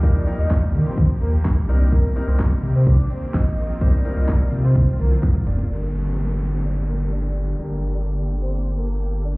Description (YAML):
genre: dance-pop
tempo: 127 BPM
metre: 4/4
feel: straight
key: G minor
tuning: A4 = 440 Hz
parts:
  - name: airy dreamy lead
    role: melody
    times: 0.0-9.3 s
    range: Bb4 to Eb5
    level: -32 LUFS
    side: equal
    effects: chorus, sidechain pumping, low-pass filter, ping-pong delay
  - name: bright concert grand piano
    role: accompaniment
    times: 0.0-9.4 s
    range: G3 to C5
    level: -32 LUFS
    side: left 2 dB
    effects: low-pass filter
  - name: supersaw chords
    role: sustained chords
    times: 0.0-9.4 s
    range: D3 to A4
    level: -31 LUFS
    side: right 1 dB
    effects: sidechain pumping, low-pass filter
  - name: round analog bass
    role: bass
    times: 0.0-9.4 s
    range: F1 to Eb3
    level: -20 LUFS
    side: equal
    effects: sidechain pumping
  - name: pop drum kit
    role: drums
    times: 0.0-5.7 s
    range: handclaps, hi-hat, kick drum, shaker, snare drum, toms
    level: -18 LUFS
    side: equal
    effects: none
  - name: group handclap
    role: percussion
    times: 0.5-5.3 s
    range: none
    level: -45 LUFS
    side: right 2 dB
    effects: none
  - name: downlifter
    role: sound effects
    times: 5.7-9.4 s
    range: none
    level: -35 LUFS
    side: right 1 dB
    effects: none
room: digital ambience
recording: heard muffled through a wall, club reverb, EQ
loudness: -18 LUFS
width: side -26 dB against mid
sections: 0.0-5.7 A section; 5.7-9.4 B section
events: drop 0.0-5.7; drum fill 4.8-5.7; filter sweep 5.7-9.4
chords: 0.0 Ebadd9; 1.7 Cm7; 5.7 Gmadd9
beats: | 0.03 0.51 0.98 1.45 | 1.92 2.40 2.87 3.34 | 3.81 4.29 4.76 5.23 | 5.70 6.17 6.65 7.12 | 7.59 8.06 8.54 9.01